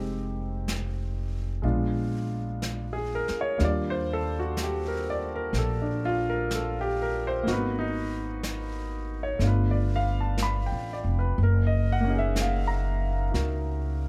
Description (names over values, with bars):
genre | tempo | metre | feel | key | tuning
jazz ballad | 62 BPM | 4/4 | swing 69% on 8ths | unclear | A4 = 441 Hz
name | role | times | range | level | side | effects
warm concert grand piano | accompaniment | 0.0-14.1 s | G3 to B5 | -32 LUFS | equal | none
upright bass | bass | 0.0-14.1 s | F1 to Eb2 | -30 LUFS | equal | none
jazz brush drum kit | drums | 0.7-14.1 s | brushed snare drum, hi-hat, snare drum | -40 LUFS | equal | none
room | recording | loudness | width
moderate club reverb, RT60 0.5 s | none | -28 LUFS | mono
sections
0.0-14.1 A section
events
none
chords
0.0 Fm9; 1.6 Bb7b9; 3.6 Ebmaj9; 7.5 Abm9; 9.4 G9; 11.4 Gb69